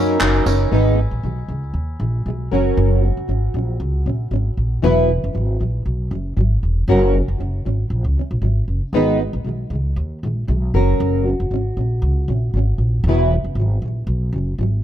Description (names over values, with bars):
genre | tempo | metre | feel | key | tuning
acoustic pop | 117 BPM | 4/4 | swing 55% on 16ths | unclear | A4 = 439 Hz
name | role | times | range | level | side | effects
fingerpicked plugged-in steel-string acoustic guitar | accompaniment | 0.0-14.8 s | G#2 to B4 | -21 LUFS | equal | double-tracked left and right
reed electric piano | accompaniment | 0.0-0.7 s | none | barely audible | none | none
bluegrass banjo | arpeggios | 0.0-0.8 s | D#3 to D#4 | -29 LUFS | right 6 dB | ping-pong delay
upright bass | bass | 0.0-14.8 s | E1 to F#2 | -18 LUFS | equal | none
handclaps and tambourine | drums | 0.2-0.6 s | none | -23 LUFS | equal | none
room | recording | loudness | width
small room ambience | none | -17 LUFS | side -11 dB against mid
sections
0.7-14.8 A section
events
none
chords
0.0 F#6; 0.7 G#m; 2.5 F#; 4.8 Esus2; 6.9 F#; 8.9 G#m; 10.7 F#; 13.1 Esus2